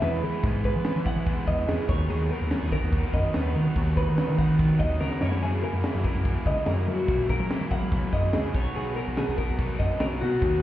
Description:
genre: math rock and midwest emo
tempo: 144 BPM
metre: 4/4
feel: straight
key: unclear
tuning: A4 = 440 Hz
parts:
  - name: twelve-string electric guitar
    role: arpeggios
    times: 0.0-10.6 s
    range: F#4 to F#5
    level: -30 LUFS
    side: left 1 dB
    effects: none
  - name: cranked stack guitar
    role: riff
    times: 0.0-10.6 s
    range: F#2 to E4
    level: -32 LUFS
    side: right 1 dB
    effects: overdrive
  - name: growling picked electric bass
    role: bass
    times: 0.0-10.6 s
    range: B1 to F#3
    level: -26 LUFS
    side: equal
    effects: overdrive
  - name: crisp fusion drum kit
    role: drums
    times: 0.0-10.5 s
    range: crash cymbal, kick drum, snare drum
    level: -28 LUFS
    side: equal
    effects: none
room: light reverb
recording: heard muffled through a wall, stone room reverb, EQ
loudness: -23 LUFS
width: side -13 dB against mid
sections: 0.0-10.6 A section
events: drum fill 5.0-5.4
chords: 0.0 Eadd9; 1.9 Bmaj7/D#; 5.2 F#13; 8.5 Bmaj7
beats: 0.02 | 0.44 0.85 1.27 1.69 | 2.10 2.52 2.93 3.35 | 3.76 4.18 4.60 5.01 | 5.43 5.84 6.26 6.68 | 7.09 7.51 7.92 8.34 | 8.76 9.17 9.59 10.01 | 10.42

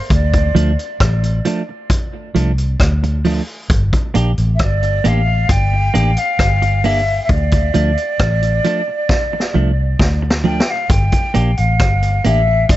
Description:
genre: roots reggae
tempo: 67 BPM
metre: 4/4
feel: straight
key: G dorian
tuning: A4 = 444 Hz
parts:
  - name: breathy mellow jazz flute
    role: melody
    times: 0.0-12.8 s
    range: C5 to G5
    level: -20 LUFS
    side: equal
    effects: tape echo
  - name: vintage muted fingered electric bass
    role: bass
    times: 0.1-12.8 s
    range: G1 to D2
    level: -16 LUFS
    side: equal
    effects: none
  - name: vintage drum kit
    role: drums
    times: 0.1-12.8 s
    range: hi-hat, kick drum, rim click, snare drum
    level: -17 LUFS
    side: equal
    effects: none
  - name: clean electric guitar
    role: accompaniment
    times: 0.5-12.5 s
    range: F3 to G4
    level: -20 LUFS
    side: right 3 dB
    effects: tape echo
room: little or no reverb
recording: nothing above 7.8 kHz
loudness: -13 LUFS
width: side -15 dB against mid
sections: 0.0-12.8 A section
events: drum fill 9.1-10.9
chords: 0.1 Dm; 3.7 Gm; 7.3 Dm; 10.9 Gm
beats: | 0.10 1.00 1.90 2.80 | 3.70 4.60 5.50 6.39 | 7.29 8.19 9.09 9.99 | 10.89 11.79 12.69

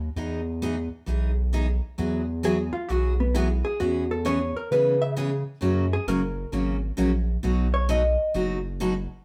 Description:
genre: country, western swing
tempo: 132 BPM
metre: 4/4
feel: swing 68% on 8ths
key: E major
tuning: A4 = 439 Hz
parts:
  - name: saturated sub bass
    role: bass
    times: 0.0-9.1 s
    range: F#1 to C#3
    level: -29 LUFS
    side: equal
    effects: none
  - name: picked steel-string acoustic guitar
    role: accompaniment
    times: 0.2-8.9 s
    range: B2 to G#4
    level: -30 LUFS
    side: equal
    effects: none
  - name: vintage hollow-body jazz guitar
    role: melody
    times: 2.5-8.3 s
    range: B3 to E5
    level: -28 LUFS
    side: equal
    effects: none
room: moderate large studio reverb, RT60 0.9 s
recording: band playing live in one room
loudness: -25 LUFS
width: mono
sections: 0.0-2.0 A section; 2.0-9.2 B section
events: hollow-body jazz guitar solo 2.0-9.2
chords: 0.2 Emaj7; 2.0 Eadd9; 3.8 C#m7/E; 5.6 F#; 7.4 B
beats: | 0.17 0.62 1.08 1.53 | 1.98 2.44 2.89 3.35 | 3.80 4.25 4.71 5.16 | 5.62 6.07 6.53 6.98 | 7.44 7.89 8.35 8.80

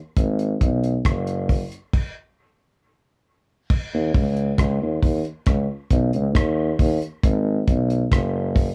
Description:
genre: dub reggae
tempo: 68 BPM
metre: 4/4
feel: straight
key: unclear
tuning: A4 = 444 Hz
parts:
  - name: warm tuba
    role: bass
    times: 0.2-8.7 s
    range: Gb1 to D#2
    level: -23 LUFS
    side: equal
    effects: none
  - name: damped 70s drum kit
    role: drums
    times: 0.2-8.7 s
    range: crash cymbal, hi-hat, kick drum, rim click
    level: -22 LUFS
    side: equal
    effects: none
room: little or no reverb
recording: none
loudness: -22 LUFS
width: mono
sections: 0.0-3.7 A section; 3.7-8.7 B section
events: stop 1.9-3.7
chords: none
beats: | 0.17 1.05 1.93 2.82 | 3.70 4.58 5.47 6.35 | 7.23 8.11

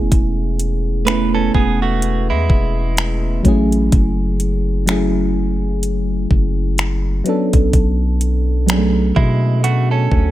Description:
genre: contemporary R&B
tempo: 63 BPM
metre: 4/4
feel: swing 58% on 16ths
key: B dorian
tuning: A4 = 440 Hz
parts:
  - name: mellow FM electric piano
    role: accompaniment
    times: 0.0-10.3 s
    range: F#3 to B4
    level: -19 LUFS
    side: right 1 dB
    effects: chorus, phaser
  - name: long sustained 808-style bass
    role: bass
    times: 0.0-10.3 s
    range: E1 to B2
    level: -18 LUFS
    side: equal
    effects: none
  - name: smooth R&B drum kit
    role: drums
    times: 0.1-10.3 s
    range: finger snaps, hi-hat, kick drum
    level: -16 LUFS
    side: equal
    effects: none
  - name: direct-recorded clean electric guitar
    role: arpeggios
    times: 1.1-3.4, 9.2-10.3 s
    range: G#3 to B4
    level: -22 LUFS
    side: right 7 dB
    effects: tape echo
room: little or no reverb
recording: none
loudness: -14 LUFS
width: side -14 dB against mid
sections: 0.0-10.3 A section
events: none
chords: 0.0 Amaj7/E; 3.4 F#m7; 7.3 Bm7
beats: | 0.12 1.07 2.02 2.97 | 3.92 4.88 5.83 6.78 | 7.74 8.69 9.64

